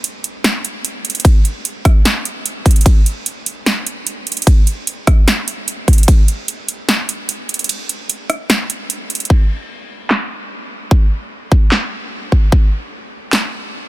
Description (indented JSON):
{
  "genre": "future bass",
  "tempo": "149 BPM",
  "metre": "4/4",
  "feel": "half-time",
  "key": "none",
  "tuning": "none",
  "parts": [
    { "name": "big-room dance drum kit", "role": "drums", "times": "0.0-13.4 s", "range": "crash cymbal, handclaps, hi-hat, ride cymbal, rim click, snare drum", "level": "-18 LUFS", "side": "right 1 dB", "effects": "low-pass filter on hats, low-pass filter on toms, low-pass filter on cymbals, low-pass filter on snare" },
    { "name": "electronic kick drum", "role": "drums", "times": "1.2-6.2, 9.3-12.6 s", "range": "none", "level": "-10 LUFS", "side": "equal", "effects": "none" }
  ],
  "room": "little or no reverb",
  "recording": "dense, heavily limited modern master",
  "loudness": "-13 LUFS",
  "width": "side -17 dB against mid",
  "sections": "0.0-9.3 A section; 9.3-13.9 B section",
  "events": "drop 0.0-9.3; break 7.7-9.3",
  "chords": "none"
}